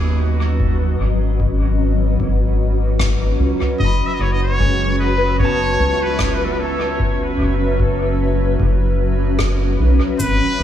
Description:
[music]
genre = ambient dub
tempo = 75 BPM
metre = 4/4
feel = swing 60% on 16ths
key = F# dorian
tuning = A4 = 440 Hz
[part]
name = granular cloud pad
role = sustained chords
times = 0.0-10.6 s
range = F#3 to E5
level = -21 LUFS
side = equal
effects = built-in reverb
[part]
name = concert harp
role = arpeggios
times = 0.0-8.5 s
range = G#3 to B5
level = -26 LUFS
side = left 4 dB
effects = analog delay
[part]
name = round analog bass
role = bass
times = 0.0-10.6 s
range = F#1 to D#2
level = -18 LUFS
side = equal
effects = none
[part]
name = electronic kick drum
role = drums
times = 0.6-10.4 s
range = none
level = -23 LUFS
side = left 1 dB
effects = none
[part]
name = rim click and cabasa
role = drums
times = 3.0-10.4 s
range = none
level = -28 LUFS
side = left 1 dB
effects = dub echo
[part]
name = trumpet with straight mute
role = melody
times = 3.8-10.6 s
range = A4 to E5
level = -24 LUFS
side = equal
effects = analog delay
[sound]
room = small room ambience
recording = echo-heavy mix, studio ambience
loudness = -15 LUFS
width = side -10 dB against mid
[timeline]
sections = 0.0-10.6 A section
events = none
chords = 0.0 G#m7; 3.8 F#m9

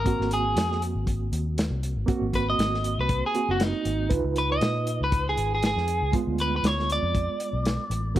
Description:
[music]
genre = straight-eighth soul blues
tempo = 118 BPM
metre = 4/4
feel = swing 55% on 16ths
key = unclear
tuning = A4 = 440 Hz
[part]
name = electric guitar at the edge of break-up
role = melody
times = 0.0-8.1 s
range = Eb4 to Eb5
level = -27 LUFS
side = equal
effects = none
[part]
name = reed electric piano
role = accompaniment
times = 0.0-8.2 s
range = Ab3 to Cb5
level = -31 LUFS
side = right 5 dB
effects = fast tremolo
[part]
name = vintage muted fingered electric bass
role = bass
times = 0.0-8.2 s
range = Gb1 to Bb2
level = -28 LUFS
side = left 1 dB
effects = none
[part]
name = warm soul drum kit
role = drums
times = 0.1-8.2 s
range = hi-hat, kick drum, snare drum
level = -28 LUFS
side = left 1 dB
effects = none
[sound]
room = little or no reverb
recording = none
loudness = -23 LUFS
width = side -13 dB against mid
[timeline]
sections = 0.0-8.2 A section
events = clean electric guitar solo 0.0-8.2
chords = 0.0 Ab9; 4.1 Db9; 6.1 Ddim7

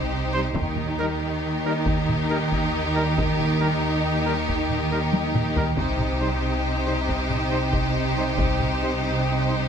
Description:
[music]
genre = cinematic, epic orchestral film score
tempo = 92 BPM (dotted quarters)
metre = 12/8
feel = straight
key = C minor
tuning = A4 = 440 Hz
[part]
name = warm symphonic violin section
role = melody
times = 0.0-9.7 s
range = Bb4 to C5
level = -33 LUFS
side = left 6 dB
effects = none
[part]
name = rich symphonic violin section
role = second line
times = 0.0-9.7 s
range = G4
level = -30 LUFS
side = left 2 dB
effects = none
[part]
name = rich symphonic viola section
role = accompaniment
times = 0.0-9.7 s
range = Eb4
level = -28 LUFS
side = equal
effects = none
[part]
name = warm symphonic cello section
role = bass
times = 0.0-9.7 s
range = C3 to Eb3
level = -28 LUFS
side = right 2 dB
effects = none
[part]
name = warm symphonic double bass section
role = bass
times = 0.0-9.7 s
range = C2 to Eb2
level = -27 LUFS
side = right 2 dB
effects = none
[part]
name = mellow French horn section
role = sustained chords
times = 0.3-9.6 s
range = G3 to Eb4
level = -34 LUFS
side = left 4 dB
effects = none
[part]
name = dark trumpet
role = stabs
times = 0.3-9.6 s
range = Bb4 to C5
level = -33 LUFS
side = right 2 dB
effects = none
[part]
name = taiko ensemble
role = drums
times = 0.5-8.8 s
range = none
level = -28 LUFS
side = left 1 dB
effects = none
[sound]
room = moderate recital hall reverb, RT60 1.6 s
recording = none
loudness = -21 LUFS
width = side -7 dB against mid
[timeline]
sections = 0.0-9.7 A section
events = drum fill 5.1-5.8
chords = 0.0 Cm; 0.5 Eb; 5.8 Cm

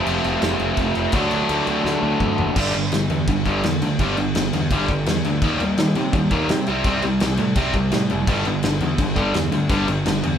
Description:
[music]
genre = punk rock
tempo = 168 BPM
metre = 4/4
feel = straight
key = unclear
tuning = A4 = 440 Hz
[part]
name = cranked stack guitar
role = riff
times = 0.0-10.4 s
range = F2 to D4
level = -20 LUFS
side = equal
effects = overdrive
[part]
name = fuzz picked electric bass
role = bass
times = 0.1-10.4 s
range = F1 to C3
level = -25 LUFS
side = equal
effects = overdrive
[part]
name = loose indie drum kit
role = drums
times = 0.1-10.3 s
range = crash cymbal, kick drum, snare drum, toms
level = -24 LUFS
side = equal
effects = none
[sound]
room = light reverb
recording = band playing live in one room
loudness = -18 LUFS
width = side -8 dB against mid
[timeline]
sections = 0.0-2.6 A section; 2.6-10.4 B section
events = half time 0.0-2.6; drum fill 1.9-2.6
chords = 0.0 F; 1.1 D; 2.6 G5; 5.4 Eb; 6.7 C5; 8.3 G5

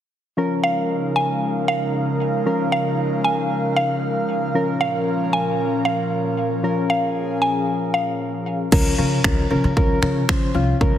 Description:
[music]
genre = dance-pop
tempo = 115 BPM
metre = 4/4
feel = straight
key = unclear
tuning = A4 = 437 Hz
[part]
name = soft electric-piano-like synth keys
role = accompaniment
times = 0.4-11.0 s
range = F3 to C5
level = -23 LUFS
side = left 2 dB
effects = chorus, sidechain pumping
[part]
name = airy breathy pad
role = sustained chords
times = 0.4-8.7 s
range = Bb2 to F5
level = -24 LUFS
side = right 1 dB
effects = chorus, sidechain pumping
[part]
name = mallet-like synth pluck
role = melody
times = 0.6-8.0 s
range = F5 to Ab5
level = -23 LUFS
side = right 1 dB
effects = chorus, tape echo
[part]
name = upright bass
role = bass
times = 8.7-11.0 s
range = C2 to Db3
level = -21 LUFS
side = equal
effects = sidechain pumping
[part]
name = pop drum kit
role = drums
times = 8.7-10.9 s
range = crash cymbal, finger snaps, kick drum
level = -19 LUFS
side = equal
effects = none
[sound]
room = moderate plate reverb, RT60 1.5 s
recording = heavily compressed radio sound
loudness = -18 LUFS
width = side -10 dB against mid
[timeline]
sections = 0.4-8.7 A section; 8.7-11.0 B section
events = none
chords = 0.4 Db6; 4.5 Bbm; 8.7 Db6

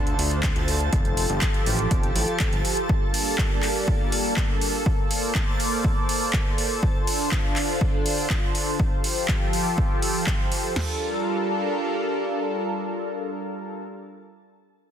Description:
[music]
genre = progressive house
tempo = 122 BPM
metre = 4/4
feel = straight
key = G minor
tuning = A4 = 436 Hz
[part]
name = lush unison pad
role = sustained chords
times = 0.0-13.8 s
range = D3 to D5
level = -26 LUFS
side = equal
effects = chorus, phaser, sidechain pumping
[part]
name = fat analog bass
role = bass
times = 0.0-2.6 s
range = F1 to D2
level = -26 LUFS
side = equal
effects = sidechain pumping
[part]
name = backwards swelling texture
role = texture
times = 0.0-10.8 s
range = A4 to A5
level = -34 LUFS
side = left 1 dB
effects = built-in reverb, sidechain pumping
[part]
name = deep house drum kit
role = drums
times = 0.1-10.6 s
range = handclaps, hi-hat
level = -28 LUFS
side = equal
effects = overdrive, sidechain pumping on hats
[part]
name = house drum kit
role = drums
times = 0.4-10.9 s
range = crash cymbal, kick drum, snare drum, toms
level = -24 LUFS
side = equal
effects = none
[sound]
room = light reverb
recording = dense, heavily limited modern master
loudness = -21 LUFS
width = side -9 dB against mid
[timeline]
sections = 0.0-10.8 A section; 10.8-14.7 B section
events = none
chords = 0.0 Dm7; 0.9 Fadd9; 2.9 Gm7; 4.9 Bbmaj7; 6.8 Dm7; 8.8 Fadd9; 10.8 Gm7

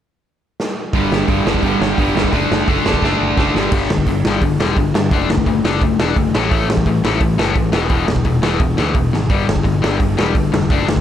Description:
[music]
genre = punk rock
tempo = 172 BPM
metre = 4/4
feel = straight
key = unclear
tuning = A4 = 441 Hz
[part]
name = raw garage drum kit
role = drums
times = 0.6-11.0 s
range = crash cymbal, hi-hat, kick drum, snare drum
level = -18 LUFS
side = right 1 dB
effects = none
[part]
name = distorted electric guitar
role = riff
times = 0.9-11.0 s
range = E2 to D4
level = -18 LUFS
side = left 6 dB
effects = distortion
[part]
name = distorted electric guitar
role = riff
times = 0.9-3.7 s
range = G2 to D4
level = -20 LUFS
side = right 16 dB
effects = distortion
[part]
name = modern bright picked electric bass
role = bass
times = 0.9-11.0 s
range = E1 to G2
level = -21 LUFS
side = right 1 dB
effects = none
[sound]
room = little or no reverb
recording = none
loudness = -14 LUFS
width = side -10 dB against mid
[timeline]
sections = 0.9-3.7 A section; 3.7-11.0 B section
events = drum fill 0.6-0.9, 3.0-3.7, 9.1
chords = 0.0 N.C.; 0.9 G5; 2.3 D/F#; 3.6 G5; 5.1 D/F#; 6.3 A5; 7.7 E5; 9.3 G5

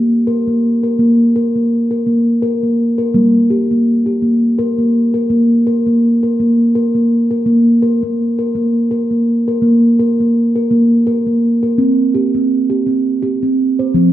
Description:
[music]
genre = world meditative, meditative tuned percussion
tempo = 83 BPM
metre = 3/4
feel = swing 56% on 16ths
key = unclear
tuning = A4 = 440 Hz
[part]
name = steel tongue drum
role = solo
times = 0.0-14.1 s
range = F3 to C5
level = -11 LUFS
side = equal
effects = none
[sound]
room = wet recital hall reverb, RT60 1.5 s, small room ambience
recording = dark, warm production, nothing above 10.6 kHz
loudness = -12 LUFS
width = side -13 dB against mid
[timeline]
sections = 0.0-9.6 A section; 9.6-14.1 B section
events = none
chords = 0.0 N.C.; 3.1 Gm; 5.3 N.C.; 11.8 C5

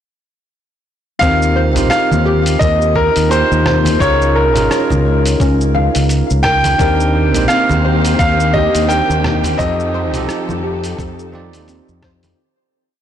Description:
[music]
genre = sunset chillout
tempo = 86 BPM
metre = 4/4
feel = swing 57% on 16ths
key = Eb lydian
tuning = A4 = 440 Hz
[part]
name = bright grand piano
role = melody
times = 1.2-10.2 s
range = Bb4 to G5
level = -16 LUFS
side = equal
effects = digital delay
[part]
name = barky tine electric piano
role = accompaniment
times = 1.2-12.4 s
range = Bb3 to D5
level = -20 LUFS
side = moving between left 7 dB and right 6 dB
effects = auto-pan, low-pass filter, digital delay
[part]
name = soft round pluck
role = arpeggios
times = 1.2-12.4 s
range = C4 to F5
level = -23 LUFS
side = left 2 dB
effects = ensemble chorus, digital delay
[part]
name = fretless electric bass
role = bass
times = 1.2-12.3 s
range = Ab1 to F2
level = -16 LUFS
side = equal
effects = transformer saturation, ensemble chorus
[part]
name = dusty soul sampler-style drum kit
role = drums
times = 1.2-12.4 s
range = congas, hi-hat, rim click, shaker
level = -24 LUFS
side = left 1 dB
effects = soft clipping on snare
[part]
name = electronic kick drum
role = drums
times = 1.2-12.2 s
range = none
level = -19 LUFS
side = equal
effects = none
[part]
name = congas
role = percussion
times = 1.8-12.4 s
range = none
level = -25 LUFS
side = right 3 dB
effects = none
[part]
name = dark chamber string section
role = sustained chords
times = 6.8-12.4 s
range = Eb3 to C5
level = -25 LUFS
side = right 1 dB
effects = none
[sound]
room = light reverb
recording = blown-out, overdriven recording, overdrive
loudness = -11 LUFS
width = side -9 dB against mid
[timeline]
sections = 1.2-12.4 groove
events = filter sweep on tine electric piano 1.2-12.4; fade-out 8.7-12.4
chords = 1.2 Eb69; 4.0 Db6; 6.8 Cm9; 9.6 F9

